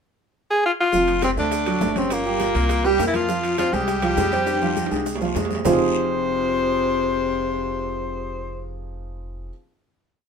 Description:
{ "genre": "Afro-Cuban jazz", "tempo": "203 BPM", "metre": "4/4", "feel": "straight", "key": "F minor", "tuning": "A4 = 440 Hz", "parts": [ { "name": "clear tenor saxophone", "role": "melody", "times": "0.5-8.8 s", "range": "Bb3 to C5", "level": "-23 LUFS", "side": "left 2 dB", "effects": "none" }, { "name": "warm concert grand piano", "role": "accompaniment", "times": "0.9-9.5 s", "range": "F3 to Db5", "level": "-24 LUFS", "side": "right 4 dB", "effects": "none" }, { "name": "upright bass", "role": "bass", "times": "0.9-9.5 s", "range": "F1 to F2", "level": "-30 LUFS", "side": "equal", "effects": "none" }, { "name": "bongos", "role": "percussion", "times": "0.9-5.7 s", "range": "none", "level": "-32 LUFS", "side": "left 8 dB", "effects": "none" }, { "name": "congas", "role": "percussion", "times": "0.9-5.7 s", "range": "none", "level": "-33 LUFS", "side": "left 3 dB", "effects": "none" }, { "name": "guiro", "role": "percussion", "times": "0.9-5.7 s", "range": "none", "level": "-37 LUFS", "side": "left 5 dB", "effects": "none" }, { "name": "maracas", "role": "percussion", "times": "0.9-5.7 s", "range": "none", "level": "-38 LUFS", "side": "right 4 dB", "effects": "none" }, { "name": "timbales", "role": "percussion", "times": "1.1-5.7 s", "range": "none", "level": "-31 LUFS", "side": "right 2 dB", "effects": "none" }, { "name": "breathy baritone saxophone", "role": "second line", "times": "1.2-8.8 s", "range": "Bb2 to G3", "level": "-27 LUFS", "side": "left 4 dB", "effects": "none" } ], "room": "moderate club reverb, RT60 0.6 s", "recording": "minimal, uncompressed stereo recording", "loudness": "-19 LUFS", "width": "side -6 dB against mid", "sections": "0.0-0.9 pickup bar; 0.9-5.7 A section; 5.7-8.0 final chord", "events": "drum fill 4.5-5.7", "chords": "0.0 N.C.; 0.9 F5; 1.5 D; 2.1 Gdim; 2.7 C5; 3.3 Fmadd9; 5.7 Fm9" }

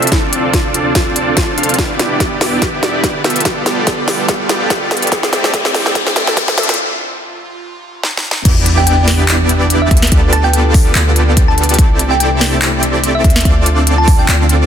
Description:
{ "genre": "future bass", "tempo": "144 BPM", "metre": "4/4", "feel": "swing 55% on 16ths, half-time", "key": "unclear", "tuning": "A4 = 440 Hz", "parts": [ { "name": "airy breathy pad", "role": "sustained chords", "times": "0.0-14.7 s", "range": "D2 to B4", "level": "-24 LUFS", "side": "right 1 dB", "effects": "chorus, vintage 12-bit sampler grit, sidechain pumping" }, { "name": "dense compressed supersaw", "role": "riff", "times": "0.0-14.7 s", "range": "B3 to F5", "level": "-16 LUFS", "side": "right 1 dB", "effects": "sidechain pumping, low-pass filter, dub echo" }, { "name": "trap drum kit", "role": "drums", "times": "0.0-14.6 s", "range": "crash cymbal, handclaps, hi-hat, snare drum", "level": "-16 LUFS", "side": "equal", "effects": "small room ambience" }, { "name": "electronic kick drum", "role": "drums", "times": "0.1-14.2 s", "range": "none", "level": "-13 LUFS", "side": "equal", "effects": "small room ambience" }, { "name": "riser and impact", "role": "sound effects", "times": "4.3-10.1 s", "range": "none", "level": "-23 LUFS", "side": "left 2 dB", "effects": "none" }, { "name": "warm 808-style bass", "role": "bass", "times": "8.5-14.7 s", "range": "C2 to E2", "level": "-14 LUFS", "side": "equal", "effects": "tube saturation, sidechain pumping" }, { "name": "thumb-piano-like synth pluck", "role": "melody", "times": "8.8-14.7 s", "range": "E5 to A5", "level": "-20 LUFS", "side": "equal", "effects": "chorus, phaser, sidechain pumping, dub echo" } ], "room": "light reverb, digital ambience", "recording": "dense, heavily limited modern master, high-pass filter", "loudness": "-10 LUFS", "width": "side -9 dB against mid", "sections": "0.0-8.5 A section; 8.5-14.7 B section", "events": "build-up 0.0-8.5; drum fill 0.0-6.8, 8.0-8.5; filter sweep 0.0-8.5; riser 4.3-6.8; break 6.8-8.5; drop 8.5-14.7; impact 8.5-10.1", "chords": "0.0 Dm7; 1.8 Em7; 3.2 G9/D; 5.1 C69; 6.6 Dm7; 8.5 Em7; 9.9 G9/D; 11.8 C69; 13.2 Dm7" }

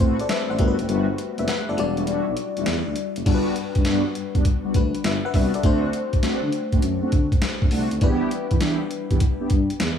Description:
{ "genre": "R&B, new jack swing", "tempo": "101 BPM", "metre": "4/4", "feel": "swing 67% on 16ths", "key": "unclear", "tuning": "A4 = 439 Hz", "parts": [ { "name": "FM electric piano", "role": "accompaniment", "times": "0.0-10.0 s", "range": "G3 to F#5", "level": "-27 LUFS", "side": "left 5 dB", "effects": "chorus" }, { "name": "mellow synth brass", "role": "stabs", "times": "0.0-9.5 s", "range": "G3 to G4", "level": "-27 LUFS", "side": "right 1 dB", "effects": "chorus, tape echo" }, { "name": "mellow tuba", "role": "bass", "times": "0.0-10.0 s", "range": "E1 to E3", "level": "-26 LUFS", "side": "equal", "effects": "none" }, { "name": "boom bap sampler-style drum kit", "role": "drums", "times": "0.0-10.0 s", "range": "crash cymbal, hi-hat, kick drum, snare drum", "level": "-22 LUFS", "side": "equal", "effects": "none" } ], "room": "light reverb", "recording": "none", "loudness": "-20 LUFS", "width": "side -8 dB against mid", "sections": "0.0-3.3 A section; 3.3-10.0 B section", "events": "break 0.9-3.3", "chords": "0.0 Am69; 0.6 Gmaj9; 1.8 Em9; 3.3 Gmaj7; 5.6 D7; 8.0 Em7" }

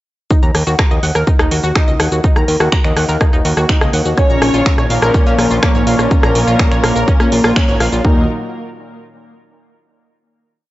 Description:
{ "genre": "melodic techno", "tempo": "124 BPM", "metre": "4/4", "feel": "straight", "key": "Eb minor", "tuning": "A4 = 440 Hz", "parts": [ { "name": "analog pluck", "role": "arpeggios", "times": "0.3-8.3 s", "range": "Db4 to Bb6", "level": "-21 LUFS", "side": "equal", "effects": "chorus, sidechain pumping, analog delay" }, { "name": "analog drone", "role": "drone", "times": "1.6-8.1 s", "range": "Eb3 to Bb3", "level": "-27 LUFS", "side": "left 1 dB", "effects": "none" }, { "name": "electronic kick drum", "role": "drums", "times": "0.3-8.1 s", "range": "none", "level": "-13 LUFS", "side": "equal", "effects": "none" }, { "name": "house drum kit", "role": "drums", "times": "0.3-8.0 s", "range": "finger snaps, hi-hat, rim click, shaker", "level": "-19 LUFS", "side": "equal", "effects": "none" }, { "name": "fat analog bass", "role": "bass", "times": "0.4-8.3 s", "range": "Eb1 to Bb2", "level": "-17 LUFS", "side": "equal", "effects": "sidechain pumping" }, { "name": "fat analog lead", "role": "melody", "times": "4.2-8.2 s", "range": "Bb3 to Db4", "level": "-17 LUFS", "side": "equal", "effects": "lush chorus, vintage 12-bit sampler grit, sidechain pumping, analog delay" }, { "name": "warm symphonic violin section", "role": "second line", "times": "4.2-8.2 s", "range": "Bb4 to Db5", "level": "-25 LUFS", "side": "equal", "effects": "sidechain pumping, analog delay" }, { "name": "warm analog pad", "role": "sustained chords", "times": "4.2-8.3 s", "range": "Eb3 to Db5", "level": "-24 LUFS", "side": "equal", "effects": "chorus, sidechain pumping" }, { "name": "brassy analog pad", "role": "stabs", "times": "4.9-8.2 s", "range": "Bb2 to Eb4", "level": "-23 LUFS", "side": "left 1 dB", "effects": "chorus, tremolo, sidechain pumping, analog delay" } ], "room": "light reverb, digital ambience", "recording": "dry, gritty hardware recording, nothing above 7.8 kHz", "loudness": "-11 LUFS", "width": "side -16 dB against mid", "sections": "0.3-8.0 drop; 8.0-10.0 final chord", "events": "drop 0.3-8.0; band accent 7.6", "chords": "0.3 Ebm; 4.2 Bbm; 8.0 Ebm" }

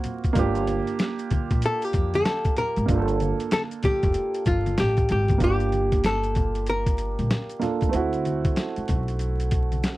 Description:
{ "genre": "hip hop, jazz-hop", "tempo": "95 BPM", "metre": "4/4", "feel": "swing 63% on 16ths", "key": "G dorian", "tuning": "A4 = 440 Hz", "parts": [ { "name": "dark grand piano", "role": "accompaniment", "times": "0.0-10.0 s", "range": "A3 to A4", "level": "-28 LUFS", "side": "right 5 dB", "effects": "none" }, { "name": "boom bap sampler-style drum kit", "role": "drums", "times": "0.0-10.0 s", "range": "hi-hat, kick drum, snare drum", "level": "-25 LUFS", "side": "equal", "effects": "none" }, { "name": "congas and maracas", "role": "percussion", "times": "0.0-10.0 s", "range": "none", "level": "-35 LUFS", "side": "left 3 dB", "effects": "none" }, { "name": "upright bass", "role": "bass", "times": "0.4-9.8 s", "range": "F1 to F2", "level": "-26 LUFS", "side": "equal", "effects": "none" }, { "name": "archtop guitar, miked and amplified", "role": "melody", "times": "1.7-7.6 s", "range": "F4 to Bb4", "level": "-25 LUFS", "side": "left 1 dB", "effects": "none" } ], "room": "little or no reverb", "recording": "dry, close 1970s-style studio recording, vinyl crackle", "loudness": "-21 LUFS", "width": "side -17 dB against mid", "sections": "0.0-5.4 A section; 5.4-10.0 B section", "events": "hollow-body jazz guitar solo 0.0-5.4", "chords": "0.4 Gm9; 7.9 D9" }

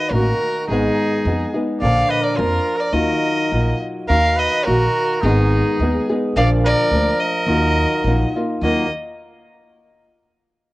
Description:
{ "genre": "mexican folk, mariachi", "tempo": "106 BPM", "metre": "2/4", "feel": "straight", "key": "Eb harmonic minor", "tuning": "A4 = 440 Hz", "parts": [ { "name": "rich violin", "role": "melody", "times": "0.0-8.9 s", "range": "Ab4 to F5", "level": "-21 LUFS", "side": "equal", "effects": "cassette tape" }, { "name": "clear trumpet", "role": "second line", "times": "0.0-8.9 s", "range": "Bb3 to D5", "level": "-24 LUFS", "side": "right 2 dB", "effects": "cassette tape" }, { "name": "flamenco guitar", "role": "accompaniment", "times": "0.0-8.9 s", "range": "Ab2 to Bb4", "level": "-21 LUFS", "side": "left 1 dB", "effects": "cassette tape" }, { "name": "upright bass", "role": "bass", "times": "0.1-8.9 s", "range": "Ab1 to F2", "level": "-20 LUFS", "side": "equal", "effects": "none" } ], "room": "light reverb, small room ambience", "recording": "home recording on cassette", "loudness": "-16 LUFS", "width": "side -18 dB against mid", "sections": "0.0-4.1 A section; 4.1-8.6 B section; 8.6-9.7 C section", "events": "none", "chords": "0.0 Ebm; 0.7 Abm; 1.8 Bb; 3.0 Ebmadd9; 4.1 Ebm; 5.2 Abm; 6.4 Bb; 7.5 Ebmadd9" }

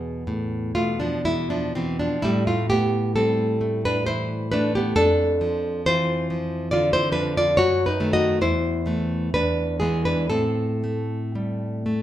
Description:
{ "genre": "romantic piece for solo classical guitar", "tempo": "67 BPM", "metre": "3/4", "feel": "uneven beats, rubato", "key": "A minor", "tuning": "A4 = 440 Hz", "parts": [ { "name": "nylon-string guitar", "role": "solo", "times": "0.0-12.0 s", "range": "E2 to D#5", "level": "-20 LUFS", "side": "equal", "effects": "none" } ], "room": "wet large studio reverb, RT60 1.2 s", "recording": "band playing live in one room", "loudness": "-20 LUFS", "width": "side -12 dB against mid", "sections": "0.0-12.0 A section", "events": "none", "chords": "0.0 E; 2.2 Am; 5.0 Dm/F; 7.6 F#m6; 8.4 Am/E; 9.3 E7; 10.3 Am" }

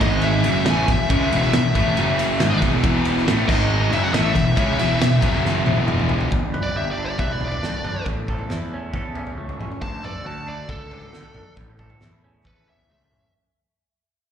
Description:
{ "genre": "quiet-loud alternative rock", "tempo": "138 BPM", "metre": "4/4", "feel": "straight", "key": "E major", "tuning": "A4 = 442 Hz", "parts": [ { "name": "biting lead guitar", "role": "melody", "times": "0.0-13.3 s", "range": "A4 to A5", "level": "-26 LUFS", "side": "left 1 dB", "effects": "overdrive, slapback echo, analog delay" }, { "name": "fuzz guitar", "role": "riff", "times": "0.0-6.3 s", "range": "E2 to C#4", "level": "-26 LUFS", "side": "right 1 dB", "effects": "none" }, { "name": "overdriven electric guitar", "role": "riff", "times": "0.0-6.3 s", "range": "E2 to C#4", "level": "-25 LUFS", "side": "right 11 dB", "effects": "slapback echo" }, { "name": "thick fuzz guitar", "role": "riff", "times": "0.0-6.3 s", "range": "E2 to C#4", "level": "-23 LUFS", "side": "left 6 dB", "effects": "distortion, slapback echo" }, { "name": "fuzz picked electric bass", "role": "bass", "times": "0.0-13.2 s", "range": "E1 to D3", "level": "-25 LUFS", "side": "right 1 dB", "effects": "overdrive" }, { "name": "loose indie drum kit", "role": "drums", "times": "0.0-13.3 s", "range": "crash cymbal, kick drum, ride cymbal, snare drum, toms", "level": "-24 LUFS", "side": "equal", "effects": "none" }, { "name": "twangy electric guitar", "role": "arpeggios", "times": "6.3-13.3 s", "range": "A2 to B4", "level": "-33 LUFS", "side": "right 3 dB", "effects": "phaser, slapback echo, analog delay" } ], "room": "moderate club reverb, RT60 0.7 s", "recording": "live gig heard through the venue's PA, recital hall reverb, lossy compression artefacts", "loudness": "-18 LUFS", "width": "side -8 dB against mid", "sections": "0.0-6.3 A section; 6.3-13.3 B section", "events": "drum fill 5.4-6.3; fade-out 6.3-13.3; lead electric guitar solo 6.3-13.3", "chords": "0.0 G#5; 0.4 E; 2.0 F#5; 2.4 E; 3.5 G#5; 3.9 E; 5.2 F#5; 5.7 E5; 6.3 Gadd9; 8.1 A; 9.8 D; 11.6 A" }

